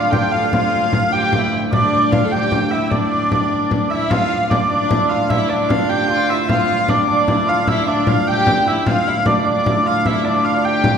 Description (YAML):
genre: medieval dance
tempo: 101 BPM (dotted quarters)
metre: 6/8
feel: straight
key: D minor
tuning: A4 = 440 Hz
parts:
  - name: warm hurdy-gurdy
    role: melody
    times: 0.0-11.0 s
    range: D5 to G5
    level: -19 LUFS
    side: equal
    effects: none
  - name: hammered dulcimer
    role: second line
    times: 0.0-11.0 s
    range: D4 to A4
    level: -23 LUFS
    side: right 4 dB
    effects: none
  - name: warm fiddle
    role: second line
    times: 0.0-11.0 s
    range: D4 to A4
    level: -22 LUFS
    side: left 2 dB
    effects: none
  - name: warm viola da gamba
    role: drone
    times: 0.0-11.0 s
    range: D2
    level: -25 LUFS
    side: right 2 dB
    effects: none
  - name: frame drum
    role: percussion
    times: 0.1-11.0 s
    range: none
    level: -20 LUFS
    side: left 1 dB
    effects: none
room: wet scoring stage reverb, RT60 2.0 s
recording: heard from further back in the room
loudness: -14 LUFS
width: side -7 dB against mid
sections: 0.0-4.1 A section; 4.1-11.0 B section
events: none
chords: none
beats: | 0.52 1.12 | 1.72 2.32 | 2.91 3.51 | 4.11 4.70 | 5.30 5.89 | 6.49 7.08 | 7.68 8.27 | 8.86 9.46 | 10.05 10.64